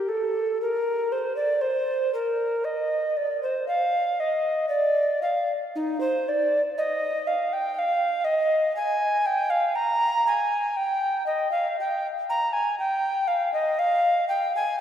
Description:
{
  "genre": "classical, baroque-style fantasia for unaccompanied recorder",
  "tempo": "60 BPM",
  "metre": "3/4",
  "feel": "rubato",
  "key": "Bb major",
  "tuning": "A4 = 439 Hz",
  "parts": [
    { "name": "mellow tenor recorder", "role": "solo", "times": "0.0-14.8 s", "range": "Eb4 to Bb5", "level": "-22 LUFS", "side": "equal", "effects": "none" }
  ],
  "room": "wet church reverb, RT60 3.4 s",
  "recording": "heard from further back in the room",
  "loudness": "-22 LUFS",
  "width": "side -9 dB against mid",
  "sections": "0.0-14.8 A section",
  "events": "none",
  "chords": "none",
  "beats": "0.62 1.64 | 2.65 3.67 4.70 | 5.75 6.78 7.78 | 8.78 9.79 10.78 | 11.77 12.77 13.77 | 14.78"
}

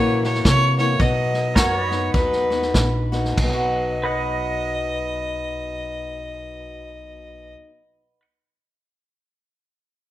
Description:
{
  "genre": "honky-tonk and classic country",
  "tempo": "93-113 BPM",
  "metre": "4/4",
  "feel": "swing 61% on 8ths",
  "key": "B major",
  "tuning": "A4 = 440 Hz",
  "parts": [
    { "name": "rich fiddle", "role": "melody", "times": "0.0-7.5 s", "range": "B4 to D#5", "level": "-25 LUFS", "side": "left 1 dB", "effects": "none" },
    { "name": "picked acoustic archtop guitar", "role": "accompaniment", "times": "0.0-7.7 s", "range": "F#2 to F#4", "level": "-26 LUFS", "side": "left 2 dB", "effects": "none" },
    { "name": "pedal steel guitar", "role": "sustained chords", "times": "0.0-8.2 s", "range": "A#4 to F#5", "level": "-30 LUFS", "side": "right 2 dB", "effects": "none" },
    { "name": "upright bass", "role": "bass", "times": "0.0-7.5 s", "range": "A#1 to C3", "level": "-26 LUFS", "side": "equal", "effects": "none" },
    { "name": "vintage drum kit", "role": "drums", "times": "0.2-3.6 s", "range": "crash cymbal, hi-hat, kick drum, snare drum", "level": "-22 LUFS", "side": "equal", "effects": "none" }
  ],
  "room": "light reverb",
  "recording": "minimal, uncompressed stereo recording",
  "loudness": "-19 LUFS",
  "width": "side -14 dB against mid",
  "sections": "0.0-3.4 A section; 3.4-8.5 B section",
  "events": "slowing down 0.0-3.4",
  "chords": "0.0 F#7; 1.0 B",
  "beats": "0.46 | 1.00 1.57 2.15 2.75 | 3.38 4.02 4.67 5.31 | 5.96 6.60 7.25 7.89"
}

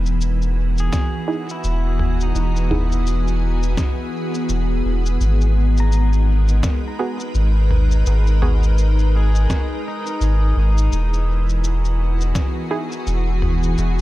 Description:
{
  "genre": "ambient dub",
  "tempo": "84 BPM",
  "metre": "4/4",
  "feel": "swing 58% on 16ths",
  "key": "unclear",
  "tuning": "A4 = 440 Hz",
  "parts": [
    { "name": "soft additive organ-like pad", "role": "sustained chords", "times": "0.0-14.0 s", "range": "E3 to B4", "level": "-25 LUFS", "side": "equal", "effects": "ensemble chorus, built-in reverb" },
    { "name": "warm sub bass", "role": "bass", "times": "0.0-14.0 s", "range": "E1 to G#1", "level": "-17 LUFS", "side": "equal", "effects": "none" },
    { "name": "lo-fi sampler-style drum kit", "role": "drums", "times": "0.1-14.0 s", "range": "shaker, snare drum, toms", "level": "-27 LUFS", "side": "equal", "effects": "none" },
    { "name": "pedal steel guitar", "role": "arpeggios", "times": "0.8-12.4 s", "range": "D#4 to A#5", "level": "-33 LUFS", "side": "left 1 dB", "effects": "dub echo" },
    { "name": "electronic kick drum", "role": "drums", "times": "0.9-12.5 s", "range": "none", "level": "-21 LUFS", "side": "equal", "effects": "none" },
    { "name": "filtered dub chord stab", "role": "stabs", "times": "1.3-12.9 s", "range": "B3 to G#4", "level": "-29 LUFS", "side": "right 3 dB", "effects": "chorus, dub echo" }
  ],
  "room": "little or no reverb",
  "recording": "none",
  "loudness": "-16 LUFS",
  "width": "side -16 dB against mid",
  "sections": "0.0-14.0 A section",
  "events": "none",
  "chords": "0.0 Emaj7; 5.2 G#m7; 10.9 Emaj7",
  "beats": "0.21 0.92 1.64 | 2.35 3.07 3.78 4.49 | 5.21 5.92 6.64 7.35 | 8.07 8.78 9.49 10.21 | 10.92 11.64 12.35 13.07 | 13.78"
}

